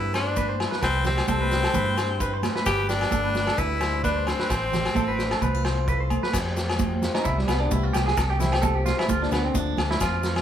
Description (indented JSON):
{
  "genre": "highlife guitar band",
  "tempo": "131 BPM",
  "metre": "4/4",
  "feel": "swing 54% on 16ths",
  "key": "C major",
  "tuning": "A4 = 440 Hz",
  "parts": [
    { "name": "raspy tenor saxophone", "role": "melody", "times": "0.0-5.9 s", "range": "C4 to G4", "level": "-27 LUFS", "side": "left 2 dB", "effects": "none" },
    { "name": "picked plugged-in swing-style acoustic guitar", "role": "accompaniment", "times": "0.0-10.4 s", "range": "G2 to B4", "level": "-32 LUFS", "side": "left 4 dB", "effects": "none" },
    { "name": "clean electric guitar", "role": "arpeggios", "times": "0.0-10.4 s", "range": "G3 to C5", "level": "-28 LUFS", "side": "right 3 dB", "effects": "warbly pitch drift" },
    { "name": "fingered electric bass", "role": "bass", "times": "0.0-10.4 s", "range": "G1 to G2", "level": "-27 LUFS", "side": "equal", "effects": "none" },
    { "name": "vintage drum kit", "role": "drums", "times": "0.1-10.4 s", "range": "crash cymbal, kick drum, snare drum", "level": "-29 LUFS", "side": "equal", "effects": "none" },
    { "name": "agogo bells", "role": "percussion", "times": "0.1-10.4 s", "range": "none", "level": "-34 LUFS", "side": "left 5 dB", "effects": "none" },
    { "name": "maracas", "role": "percussion", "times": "0.1-10.3 s", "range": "none", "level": "-41 LUFS", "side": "left 4 dB", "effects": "none" },
    { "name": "congas", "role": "percussion", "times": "0.4-10.1 s", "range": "none", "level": "-31 LUFS", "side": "right 4 dB", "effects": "none" }
  ],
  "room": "moderate large studio reverb, RT60 0.9 s",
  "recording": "band playing live in one room",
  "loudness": "-21 LUFS",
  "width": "side -10 dB against mid",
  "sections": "0.0-6.3 A section; 6.3-10.4 B section",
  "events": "drum fill 6.1; clean electric guitar solo 6.3-10.4",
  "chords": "0.0 Cmaj7; 2.7 G; 4.5 F6/A; 6.3 Fsus2; 7.3 C5; 8.2 Fsus2/C; 9.1 Dm"
}